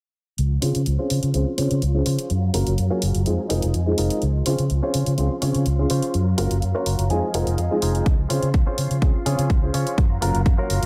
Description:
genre	filtered disco house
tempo	125 BPM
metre	4/4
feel	straight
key	Db major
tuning	A4 = 440 Hz
part	string machine, full ensemble	sustained chords	0.4-10.9 s	F3 to C6	-34 LUFS	equal	phaser, ensemble chorus, vintage 12-bit sampler grit, sidechain pumping, low-pass filter
part	fingered electric bass	bass	0.4-10.9 s	F1 to Db3	-24 LUFS	equal	tube saturation, sidechain pumping, low-pass filter
part	electronic hi-hat	drums	0.4-10.9 s	none	-33 LUFS	equal	sidechain pumping on hats
part	warm grand piano	accompaniment	0.6-10.7 s	F3 to C6	-28 LUFS	equal	phaser, vintage 12-bit sampler grit, sidechain pumping, low-pass filter
part	direct-recorded clean electric guitar	riff	0.6-10.9 s	Db4 to Bb5	-33 LUFS	equal	sidechain pumping, low-pass filter
part	electronic kick drum	drums	8.1-10.6 s	none	-21 LUFS	equal	none
room	light reverb, digital ambience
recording	none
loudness	-21 LUFS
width	mono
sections	0.4-10.9 A section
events	filter sweep 0.4-10.9; clean electric guitar fill 6.6-8.1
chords	0.4 Dbmaj7; 2.3 Gbmaj7; 3.3 Fm7; 4.2 Dbmaj7; 6.1 Gbmaj7; 7.1 Fm7; 8.1 Dbmaj7; 10.0 Gbmaj7

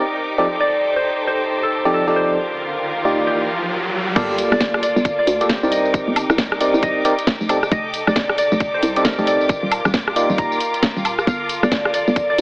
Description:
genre	UK garage, two-step garage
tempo	135 BPM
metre	4/4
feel	swing 62% on 16ths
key	G minor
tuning	A4 = 440 Hz
part	concert harp	melody	0.0-12.4 s	G4 to Bb5	-22 LUFS	equal	tape echo
part	warm symphonic violin section	sustained chords	0.0-12.4 s	Bb3 to D6	-24 LUFS	equal	sidechain pumping
part	FM electric piano	stabs	0.0-10.6 s	F3 to D5	-19 LUFS	equal	chorus, dub echo
part	riser and sub drop	sound effects	2.3-5.9 s	none	-27 LUFS	equal	none
part	hollow knocking FM bass	bass	4.2-12.4 s	Eb1 to D2	-22 LUFS	equal	tube saturation
part	electronic kick drum	drums	4.2-12.3 s	none	-21 LUFS	equal	none
part	garage drum kit	drums	4.2-12.4 s	crash cymbal, hi-hat, rim click, snare drum, tambourine, woodblock	-21 LUFS	equal	none
room	moderate lush hall reverb, RT60 1.6 s, digital ambience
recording	heavily compressed radio sound, multiband compression, AM radio sound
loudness	-16 LUFS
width	side -27 dB against mid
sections	0.0-4.2 A section; 4.2-12.4 B section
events	riser 2.3-4.2; drop 4.2-12.4; impact 4.2-5.9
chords	0.4 F13; 2.4 Ebmaj7; 4.2 Gm7; 5.7 Cm7; 7.5 F13; 9.5 Ebmaj7; 11.3 Gm7

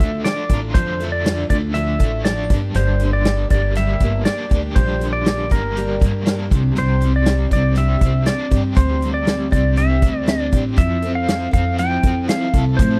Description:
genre	folk rock and heartland rock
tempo	120 BPM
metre	4/4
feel	straight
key	unclear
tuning	A4 = 440 Hz
part	clean lap steel guitar	melody	0.0-13.0 s	Bb4 to G5	-26 LUFS	equal	none
part	picked steel-string acoustic guitar	accompaniment	0.0-13.0 s	G2 to A4	-27 LUFS	equal	none
part	overdriven electric guitar	riff	0.0-13.0 s	G2 to A4	-30 LUFS	equal	tremolo
part	upright bass	bass	0.0-13.0 s	G1 to A2	-22 LUFS	equal	none
part	natural country drum kit	drums	0.0-12.9 s	hi-hat, kick drum, snare drum	-20 LUFS	equal	none
room	small room ambience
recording	dry, close 1970s-style studio recording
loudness	-18 LUFS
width	mono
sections	0.0-13.0 A section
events	none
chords	0.0 Dm; 2.5 Gm; 6.5 Csus2; 10.8 Fmaj7

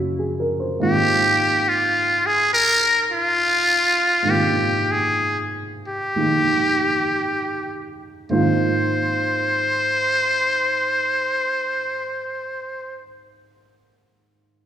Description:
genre	jazz ballad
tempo	52-72 BPM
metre	4/4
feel	swing 66% on 8ths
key	Ab major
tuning	A4 = 440 Hz
part	dark upright piano	accompaniment	0.0-14.7 s	Gb2 to C5	-23 LUFS	right 2 dB	none
part	trumpet with metal mute	melody	0.8-13.0 s	F4 to C5	-18 LUFS	left 1 dB	none
room	wet scoring stage reverb, RT60 1.8 s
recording	recorded in a church or concert hall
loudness	-17 LUFS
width	side -9 dB against mid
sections	0.0-8.3 A section; 8.3-12.9 B section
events	slowing down 0.8-8.3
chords	0.0 Gb9; 0.8 Ab69

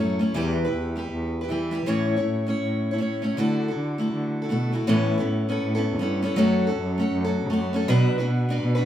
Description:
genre	celtic folk, Celtic hornpipe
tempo	160 BPM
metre	4/4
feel	swing 62% on 8ths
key	D major, A major from 4.9 s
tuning	A4 = 441 Hz
part	picked steel-string acoustic guitar	accompaniment	0.0-8.9 s	A2 to C#5	-23 LUFS	equal	none
part	muted cello	bass	0.0-8.9 s	E2 to E3	-27 LUFS	right 1 dB	none
room	moderate studio reverb, RT60 0.6 s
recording	none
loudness	-22 LUFS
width	side -11 dB against mid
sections	0.0-4.9 A section; 4.9-8.9 B section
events	none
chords	0.4 Em; 1.9 A; 3.4 Dadd9; 4.9 Aadd9; 6.4 F#m; 7.9 Bm

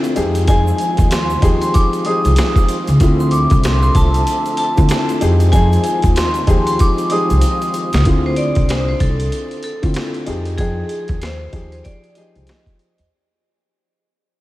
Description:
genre	hip hop, boom-bap hip-hop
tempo	95 BPM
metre	4/4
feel	swing 60% on 16ths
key	unclear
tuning	A4 = 440 Hz
part	dark upright piano	accompaniment	0.0-12.9 s	D3 to G5	-20 LUFS	left 2 dB	high-pass filter, low-pass filter
part	tonewheel organ	sustained chords	0.0-8.0 s	D3 to E5	-27 LUFS	right 1 dB	overdrive, chorus vibrato, slow rotary speaker, high-pass filter, low-pass filter
part	boom bap sampler-style drum kit	drums	0.0-13.1 s	hi-hat, kick drum, snare drum	-18 LUFS	equal	none
part	tube shaker	percussion	0.0-8.0 s	none	-41 LUFS	right 6 dB	none
part	upright bass	bass	0.2-13.1 s	C2 to F2	-16 LUFS	equal	none
part	vibraphone with hard mallets	melody	0.5-13.1 s	Ab4 to Eb6	-21 LUFS	equal	high-pass filter, low-pass filter, tape echo
room	light reverb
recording	vinyl crackle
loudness	-13 LUFS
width	side -16 dB against mid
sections	0.0-8.1 A section; 8.1-13.1 B section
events	break 0.0-0.5; drum fill 7.4-8.1; fade-out 8.1-13.1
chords	0.2 Fm9; 3.0 Dm9; 5.2 Fm9; 8.1 Dm9; 10.3 Fm9

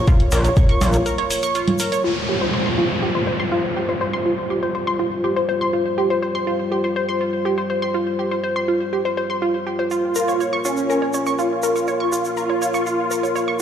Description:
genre	melodic techno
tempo	122 BPM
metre	4/4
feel	straight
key	unclear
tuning	A4 = 438 Hz
part	dark analog pad	sustained chords	0.0-13.6 s	G3 to Db5	-25 LUFS	left 2 dB	chorus, sidechain pumping
part	analog pluck	arpeggios	0.0-13.6 s	F4 to Db6	-22 LUFS	right 1 dB	chorus, vintage 12-bit sampler grit, sidechain pumping, digital delay
part	electronic hi-hat and congas	drums	0.1-2.0 s	none	-24 LUFS	right 2 dB	sidechain pumping on hats, sidechain pumping on perc
part	electronic kick drum	drums	0.1-0.7 s	none	-14 LUFS	equal	none
part	tube shaker	percussion	0.1-2.0, 9.9-13.6 s	none	-32 LUFS	right 3 dB	none
part	gritty driven synth bass	bass	0.3-1.0 s	Bb1	-18 LUFS	equal	tube saturation, sidechain pumping
part	downlifter	sound effects	2.0-6.0 s	none	-24 LUFS	right 1 dB	none
part	wide unison lead	melody	9.9-13.6 s	Db4 to F4	-22 LUFS	equal	ensemble chorus, sidechain pumping, digital delay
room	moderate huge ambient reverb, RT60 6.5 s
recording	played on a big sound system in a bare room, large studio reverb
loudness	-18 LUFS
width	side -8 dB against mid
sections	0.0-2.0 A section; 2.0-13.6 B section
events	break 1.1-2.0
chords	0.0 Bbm; 2.0 Fsus2; 9.9 Bbm

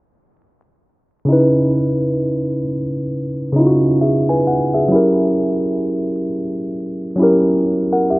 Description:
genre	hip hop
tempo	66 BPM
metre	4/4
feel	swing 60% on 16ths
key	C# minor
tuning	A4 = 440 Hz
part	tine electric piano	accompaniment	1.3-8.2 s	C#3 to G#5	-14 LUFS	equal	low-pass filter
room	moderate plate reverb, RT60 3.5 s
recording	dark, warm production, vinyl crackle, low-pass filter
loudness	-14 LUFS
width	side -20 dB against mid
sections	1.3-8.2 A section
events	filter sweep 1.3-8.2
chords	1.3 C#m9; 4.9 F#7b9

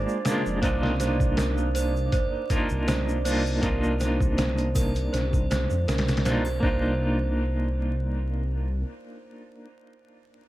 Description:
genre	trip hop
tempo	80 BPM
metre	4/4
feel	swing 54% on 16ths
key	C minor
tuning	A4 = 440 Hz
part	clean electric guitar	accompaniment	0.0-9.7 s	Ab3 to F4	-29 LUFS	equal	tremolo, tape echo
part	deep dark ambient pad	sustained chords	0.0-6.7 s	D5	-38 LUFS	right 6 dB	chorus, built-in reverb, vintage 12-bit sampler grit
part	worn celesta	arpeggios	0.0-10.5 s	Bb4 to C5	-33 LUFS	right 4 dB	vintage 12-bit sampler grit, dub echo
part	dark detuned saw bass	bass	0.0-8.8 s	F1 to F2	-27 LUFS	equal	none
part	tube shaker and triangle	percussion	0.1-6.6 s	none	-44 LUFS	right 1 dB	dub echo
part	trip hop sampler-style drum kit	drums	0.2-6.8 s	hi-hat, kick drum, snare drum	-27 LUFS	equal	none
room	digital ambience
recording	echo-heavy mix, vinyl crackle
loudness	-23 LUFS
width	side -16 dB against mid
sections	0.0-6.6 A section; 6.6-9.6 B section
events	none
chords	0.0 Bb7; 0.6 Cm11

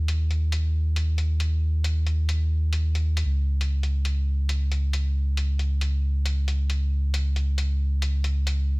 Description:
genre	future garage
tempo	136 BPM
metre	4/4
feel	swing 64% on 16ths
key	unclear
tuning	A4 = 440 Hz
part	soft dub sub bass	bass	0.0-8.8 s	Db2 to Eb2	-22 LUFS	equal	none
part	electronic hi-hat	drums	0.1-8.5 s	none	-33 LUFS	left 2 dB	studio reverb
room	little or no reverb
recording	none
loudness	-22 LUFS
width	side -29 dB against mid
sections	0.0-8.8 A section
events	none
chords	none

